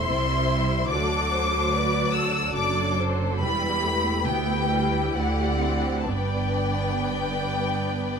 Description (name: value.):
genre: classical, slow romantic movement for string orchestra.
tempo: 61-74 BPM.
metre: 3/4.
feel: rubato.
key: G major.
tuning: A4 = 440 Hz.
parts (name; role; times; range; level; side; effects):
rich studio violin section; melody; 0.0-8.2 s; F#5 to E6; -27 LUFS; left 3 dB; none.
rich symphonic violin section; second line; 0.0-8.2 s; G4 to E5; -29 LUFS; left 3 dB; none.
rich studio viola section; accompaniment; 0.0-8.2 s; F#3 to F#4; -30 LUFS; right 1 dB; none.
clear studio cello section; bass; 0.0-8.2 s; C2 to G2; -30 LUFS; right 2 dB; none.
warm studio double bass section; bass; 0.0-8.2 s; E1 to D2; -29 LUFS; right 4 dB; none.
room: moderate scoring stage reverb, RT60 1.8 s.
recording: none.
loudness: -22 LUFS.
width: side -6 dB against mid.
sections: 0.0-8.2 A section.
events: none.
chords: 0.0 C/E; 0.9 D; 3.4 Em; 4.3 G/D; 5.1 D7; 6.1 G.